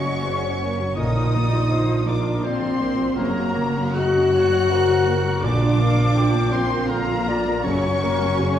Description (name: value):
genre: cinematic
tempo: 81 BPM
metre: 3/4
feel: rubato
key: unclear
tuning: A4 = 444 Hz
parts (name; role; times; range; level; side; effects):
- warm symphonic violin section; melody; 0.0-8.6 s; Bb5 to Gb6; -32 LUFS; left 3 dB; none
- mellow silver concert flute; second line; 0.0-8.6 s; Bb4 to G5; -31 LUFS; left 1 dB; none
- rich studio violin section; second line; 0.0-8.6 s; Bb5 to Gb6; -34 LUFS; left 2 dB; none
- warm oboe; second line; 0.0-8.6 s; Bb4 to Gb5; -31 LUFS; right 1 dB; none
- felt-muted upright piano; accompaniment; 0.0-8.6 s; Gb2 to D5; -28 LUFS; equal; none
- rich symphonic viola section; accompaniment; 0.0-8.6 s; Db3 to Gb4; -29 LUFS; right 2 dB; none
- dark French horn section; sustained chords; 0.0-8.6 s; Bb3 to Gb4; -24 LUFS; left 3 dB; none
- concert harp; arpeggios; 0.0-8.6 s; Gb2 to Gb5; -26 LUFS; equal; none
- rich studio cello section; bass; 0.0-8.6 s; Bb3 to Gb4; -28 LUFS; right 2 dB; none
- rich symphonic double bass section; bass; 0.0-8.6 s; Gb1 to Bb1; -26 LUFS; right 1 dB; none
room: wet scoring stage reverb, RT60 1.9 s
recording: heard from further back in the room, vinyl crackle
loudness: -18 LUFS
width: side -10 dB against mid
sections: 0.0-8.6 A section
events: none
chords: 0.0 Gb; 1.0 Bb; 3.2 Gb; 5.4 Bb; 7.7 Gb